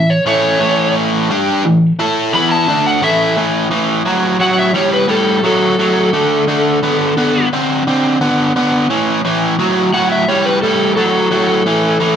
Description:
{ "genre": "rock", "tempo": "87 BPM", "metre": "4/4", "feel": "straight", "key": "A mixolydian", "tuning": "A4 = 441 Hz", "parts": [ { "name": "overdriven slide guitar", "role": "melody", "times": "0.0-12.2 s", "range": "A4 to B5", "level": "-15 LUFS", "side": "left 1 dB", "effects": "none" }, { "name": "biting overdriven guitar", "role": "riff", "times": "0.0-12.2 s", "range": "A2 to A4", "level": "-13 LUFS", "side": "equal", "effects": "none" } ], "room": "wet studio reverb, RT60 0.6 s", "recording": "band playing live in one room", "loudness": "-11 LUFS", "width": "side -8 dB against mid", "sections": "0.0-3.4 A section; 3.4-12.2 B section", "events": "electric slide guitar solo 0.0-3.4", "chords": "0.0 A; 3.4 A5; 6.1 D5; 8.9 A5" }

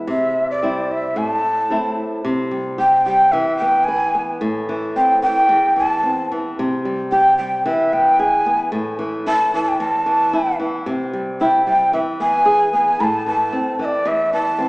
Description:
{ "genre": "andean folk", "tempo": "112 BPM", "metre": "2/4", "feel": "straight", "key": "A minor", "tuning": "A4 = 438 Hz", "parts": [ { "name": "flamenco guitar", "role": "accompaniment", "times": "0.0-14.7 s", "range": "E2 to B4", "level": "-22 LUFS", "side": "equal", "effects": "none" }, { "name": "breathy quena", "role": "melody", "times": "0.1-14.7 s", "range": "D5 to B5", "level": "-16 LUFS", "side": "equal", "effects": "none" } ], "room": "wet recital hall reverb, RT60 1.8 s", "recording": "recorded in a church or concert hall, small speaker sound", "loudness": "-15 LUFS", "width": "side -24 dB against mid", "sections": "0.0-2.3 A section; 2.3-10.9 B section; 10.9-14.7 B section", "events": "speeding up 0.0-14.7", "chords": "0.1 C; 1.2 Am; 2.3 C5; 3.3 E5; 4.4 Am; 6.6 C5; 7.7 E; 8.7 A5; 10.9 C; 11.9 E; 13.0 Am" }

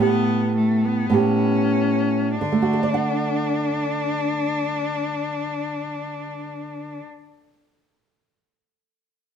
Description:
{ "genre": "romantic duo for cello and classical guitar", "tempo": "48 BPM", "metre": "4/4", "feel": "rubato", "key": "D major", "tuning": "A4 = 443 Hz", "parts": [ { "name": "rich cello", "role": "melody", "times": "0.0-7.0 s", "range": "A3 to D4", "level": "-24 LUFS", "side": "left 5 dB", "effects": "none" }, { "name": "nylon-string guitar", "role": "accompaniment", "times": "0.0-7.5 s", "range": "A2 to F#5", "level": "-22 LUFS", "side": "right 3 dB", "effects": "none" } ], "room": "moderate stone room reverb, RT60 1.1 s", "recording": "band playing live in one room", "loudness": "-20 LUFS", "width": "side -8 dB against mid", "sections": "0.0-2.4 A section; 2.4-7.4 B section", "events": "slowing down 0.0-2.4", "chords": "0.0 A9; 2.4 D" }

